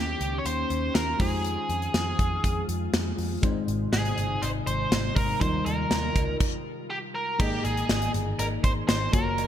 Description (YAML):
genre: 1980s-style pop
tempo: 121 BPM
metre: 4/4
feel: straight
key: Ab major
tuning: A4 = 441 Hz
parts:
  - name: biting lead guitar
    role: melody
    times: 0.0-9.5 s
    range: G4 to Db5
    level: -30 LUFS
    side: right 1 dB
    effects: overdrive, ping-pong delay
  - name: FM electric piano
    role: accompaniment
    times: 0.0-9.5 s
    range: Ab2 to Eb5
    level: -33 LUFS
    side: left 2 dB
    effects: chorus
  - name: glassy FM pad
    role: sustained chords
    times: 0.0-9.5 s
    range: C3 to Bb4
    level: -35 LUFS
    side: left 2 dB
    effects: ensemble chorus, built-in reverb
  - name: vintage muted picked electric bass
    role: bass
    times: 0.0-9.5 s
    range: Gb1 to F2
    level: -31 LUFS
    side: equal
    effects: none
  - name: modern studio drum kit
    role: drums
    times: 0.2-9.5 s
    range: crash cymbal, hi-hat, kick drum, snare drum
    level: -27 LUFS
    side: equal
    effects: gated reverb
  - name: cowbell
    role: percussion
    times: 3.4-9.5 s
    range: none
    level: -42 LUFS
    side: right 1 dB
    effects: none
room: light reverb, studio reverb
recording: bright 1980s-style digital production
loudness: -24 LUFS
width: side -10 dB against mid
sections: 0.0-7.4 A section; 7.4-9.5 B section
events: stop 6.4-7.4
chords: 0.0 Eb7; 1.2 Fm7; 3.4 Ab; 5.4 Ebadd9; 7.4 Absus2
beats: 0.46 0.95 | 1.45 1.94 2.44 2.94 | 3.43 3.93 4.42 4.92 | 5.41 5.91 6.41 6.90 | 7.40 7.89 8.39 8.88 | 9.38